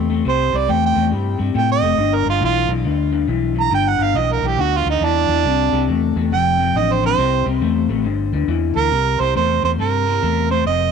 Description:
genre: electric blues shuffle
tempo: 139 BPM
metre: 4/4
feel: swing 64% on 8ths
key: C mixolydian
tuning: A4 = 440 Hz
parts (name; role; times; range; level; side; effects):
- electric guitar through a small old amp; riff; 0.0-10.9 s; F2 to A3; -20 LUFS; left 13 dB; lush chorus
- vintage muted fingered electric bass; bass; 0.0-10.9 s; F1 to A2; -21 LUFS; equal; none
- warm harmonica; melody; 0.3-10.9 s; D4 to Bb5; -19 LUFS; right 10 dB; overdrive
room: light reverb, small room reverb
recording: 1960s-style stereo with parts hard left and right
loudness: -15 LUFS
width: side -6 dB against mid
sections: 0.0-8.9 A section; 8.9-10.9 B section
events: harmonica solo 0.0-8.9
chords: 0.0 C; 2.0 G; 5.4 Cadd9; 6.3 Fadd9; 7.2 C; 8.0 G5; 8.9 C7

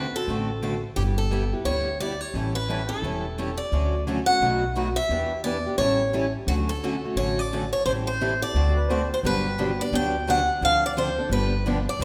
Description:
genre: acoustic string swing (jazz manouche)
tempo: 174 BPM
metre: 4/4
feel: swing 62% on 8ths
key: D major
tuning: A4 = 437 Hz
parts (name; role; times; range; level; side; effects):
- picked swing-style acoustic guitar; melody; 0.0-12.0 s; F#4 to G5; -28 LUFS; equal; none
- picked steel-string acoustic guitar; accompaniment; 0.0-12.0 s; B2 to A4; -31 LUFS; equal; none
- picked swing-style acoustic guitar; accompaniment; 0.0-12.0 s; B2 to B4; -37 LUFS; equal; none
- upright bass; bass; 0.0-12.0 s; E1 to E2; -30 LUFS; equal; none
- mellow accordion; second line; 8.8-9.2 s; B4 to C5; -35 LUFS; equal; none
room: moderate scoring stage reverb, RT60 1.9 s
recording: none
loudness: -25 LUFS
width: mono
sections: 0.0-9.2 A section; 9.2-12.0 B section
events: none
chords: 0.0 D; 1.0 G69; 2.3 A9; 3.7 Dmaj7; 4.4 B7; 5.1 Em7; 5.8 A7; 6.5 Dmaj7; 7.9 Am7; 8.6 D7; 9.2 Gmaj7; 10.6 Dm7; 11.3 G7

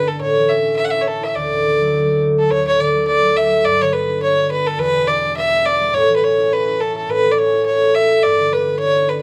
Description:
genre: celtic folk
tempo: 210 BPM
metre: 4/4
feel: swing 56% on 8ths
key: D major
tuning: A4 = 442 Hz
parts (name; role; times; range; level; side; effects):
- rich fiddle; melody; 0.0-9.2 s; A4 to F#5; -19 LUFS; equal; none
- concert harp; accompaniment; 0.0-9.2 s; D2 to A4; -20 LUFS; equal; none
room: light reverb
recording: dark, warm production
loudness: -16 LUFS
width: mono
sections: 0.0-2.5 A section; 2.5-9.2 A section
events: none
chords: 0.2 A; 1.3 D; 3.6 Gmaj7; 4.8 Em; 5.9 A; 8.2 G

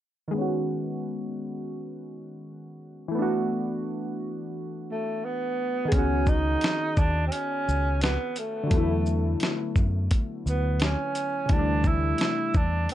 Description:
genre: lo-fi hip hop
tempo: 86 BPM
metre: 4/4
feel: swing 56% on 16ths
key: C# phrygian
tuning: A4 = 441 Hz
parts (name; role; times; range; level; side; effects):
- warm analog keys; accompaniment; 0.3-12.9 s; C3 to G#4; -30 LUFS; left 1 dB; chorus, low-pass filter
- breathy tenor saxophone; melody; 4.9-12.9 s; A3 to E4; -28 LUFS; right 2 dB; low-pass filter, analog delay
- deep dub fingered electric bass; bass; 5.9-12.9 s; C#2 to F#2; -26 LUFS; equal; none
- dusty soul sampler-style drum kit; drums; 5.9-12.9 s; hi-hat, kick drum, shaker, snare drum; -25 LUFS; equal; vintage 12-bit sampler grit
room: light reverb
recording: none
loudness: -24 LUFS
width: side -12 dB against mid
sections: 0.3-5.9 A section; 5.9-12.9 B section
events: filter sweep on synth keys 0.3-5.9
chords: 0.3 C#9sus4; 3.1 E9sus4; 5.9 C#9sus4; 8.7 E9sus4; 11.5 D9sus4

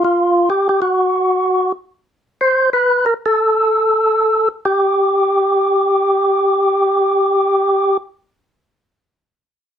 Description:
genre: jazz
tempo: free time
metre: none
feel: none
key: unclear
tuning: A4 = 440 Hz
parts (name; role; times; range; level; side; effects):
- percussive tonewheel organ; solo; 0.0-8.0 s; F4 to C5; -13 LUFS; equal; slow rotary speaker, overdrive
room: light reverb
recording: close, detailed microphones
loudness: -13 LUFS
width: side -9 dB against mid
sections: 0.0-2.1 A section; 2.1-4.6 B section; 4.6-7.2 C section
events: none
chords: none

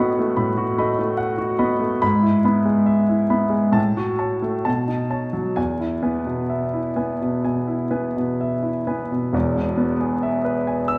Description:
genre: classical, romantic character piece for solo piano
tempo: 62-75 BPM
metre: 4/4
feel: rubato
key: E major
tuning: A4 = 440 Hz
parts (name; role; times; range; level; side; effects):
- clear grand piano; solo; 0.0-11.0 s; E1 to E6; -21 LUFS; equal; none
room: wet recital hall reverb, RT60 1.4 s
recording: recorded in a church or concert hall, vinyl crackle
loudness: -21 LUFS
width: mono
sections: 0.0-9.3 A section; 9.3-11.0 B section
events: none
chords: 0.0 B7/A; 2.0 E/G#; 3.8 F#m/A; 4.7 B9; 5.6 E

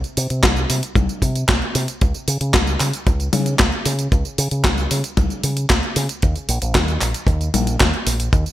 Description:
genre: italo disco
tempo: 114 BPM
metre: 4/4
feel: straight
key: unclear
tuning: A4 = 438 Hz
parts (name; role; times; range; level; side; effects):
- clean 12-bit digital drum machine; drums; 0.0-8.5 s; handclaps, hi-hat, snare drum, tambourine, toms; -20 LUFS; left 1 dB; gated reverb
- fingered electric bass with an envelope filter; bass; 0.2-8.4 s; Bb1 to Db3; -21 LUFS; equal; tube saturation
- kick drum; drums; 0.4-8.4 s; none; -18 LUFS; equal; none
room: light reverb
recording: bright 1980s-style digital production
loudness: -16 LUFS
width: side -14 dB against mid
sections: 0.0-8.5 A section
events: none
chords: none

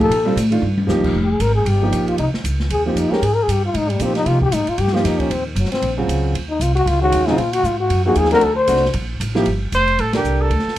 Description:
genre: modal jazz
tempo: 231 BPM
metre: 4/4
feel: swing 59% on 8ths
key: unclear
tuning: A4 = 439 Hz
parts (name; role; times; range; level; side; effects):
- growling trombone; second line; 0.0-8.9 s; Eb3 to C5; -18 LUFS; left 3 dB; none
- dark concert grand piano; accompaniment; 0.0-10.5 s; Db3 to Bb4; -20 LUFS; right 2 dB; none
- upright bass; bass; 0.0-10.8 s; F1 to C3; -20 LUFS; equal; none
- open jazz drum kit; drums; 0.0-10.8 s; crash cymbal, hi-hat, kick drum, ride cymbal, snare drum, toms; -27 LUFS; equal; none
- breathy trumpet; melody; 9.7-10.8 s; G4 to C5; -18 LUFS; right 1 dB; none
room: light reverb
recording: none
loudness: -15 LUFS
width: side -13 dB against mid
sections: 0.0-1.1 A section; 1.1-9.5 A section; 9.5-10.8 B section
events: trombone solo 0.0-9.5; drum fill 0.6; band accent 10.1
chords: 0.0 F9sus4; 1.1 Fm9; 5.3 Ebm9; 8.4 D7; 9.5 G9sus4

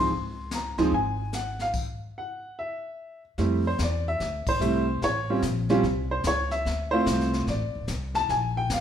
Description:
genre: jazz piano trio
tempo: 146 BPM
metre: 4/4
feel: swing 65% on 8ths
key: F major from 3.4 s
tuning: A4 = 440 Hz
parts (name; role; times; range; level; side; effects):
- clear upright piano; melody; 0.0-8.8 s; F3 to C6; -26 LUFS; right 1 dB; none
- upright bass; bass; 0.0-8.8 s; D1 to F2; -30 LUFS; equal; none
- jazz brush drum kit; drums; 0.1-8.8 s; brushed snare drum, crash cymbal, hi-hat, kick drum, snare drum; -34 LUFS; left 2 dB; none
room: moderate large studio reverb, RT60 0.9 s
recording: band playing live in one room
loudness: -24 LUFS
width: side -9 dB against mid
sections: 0.0-3.4 A section; 3.4-8.8 B section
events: stop 1.7-3.4; band accent 4.4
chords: 0.1 Dbmaj7(no3); 1.7 N.C.; 3.4 Fmaj9; 5.0 A(#9); 6.7 Dm9; 8.3 Bbm

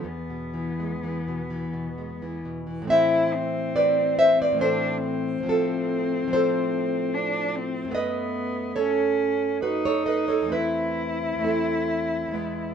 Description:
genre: romantic duo for cello and classical guitar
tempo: 60-75 BPM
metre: 3/4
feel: rubato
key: A minor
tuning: A4 = 441 Hz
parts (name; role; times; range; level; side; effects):
- rich cello; melody; 0.0-12.7 s; B3 to E4; -28 LUFS; left 4 dB; none
- nylon-string guitar; accompaniment; 0.0-12.7 s; E2 to E5; -24 LUFS; right 1 dB; none
room: moderate studio reverb, RT60 0.6 s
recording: band playing live in one room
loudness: -22 LUFS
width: side -7 dB against mid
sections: 0.0-2.9 A section; 2.9-12.7 B section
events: none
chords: 0.0 E; 2.9 Am; 5.5 F/A; 7.9 B7/F#; 10.5 Am/E

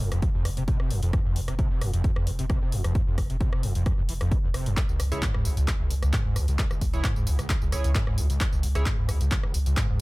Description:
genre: driving peak-time techno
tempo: 132 BPM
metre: 4/4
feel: straight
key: F harmonic minor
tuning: A4 = 439 Hz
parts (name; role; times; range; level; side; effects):
- screaming distorted acid line; riff; 0.0-10.0 s; B1 to Ab3; -28 LUFS; equal; distortion, ensemble chorus, cassette tape, sidechain pumping, digital delay
- saturated sub bass; bass; 0.0-10.0 s; F1 to Db2; -28 LUFS; equal; overdrive, sidechain pumping, low-pass filter
- punchy analog drum machine; drums; 0.0-9.9 s; handclaps, hi-hat, rim click, tambourine; -34 LUFS; equal; overdrive, sidechain pumping on hats, sidechain pumping on cymbals, sidechain pumping on perc
- electronic kick drum; drums; 0.2-9.9 s; none; -26 LUFS; equal; overdrive
- sync-sweep polysynth; stabs; 5.1-8.9 s; Fb4 to Db5; -36 LUFS; right 3 dB; chorus, sidechain pumping, digital delay
room: digital ambience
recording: none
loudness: -23 LUFS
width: side -22 dB against mid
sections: 0.0-10.0 A section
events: none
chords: 0.0 F5; 4.8 Dbm

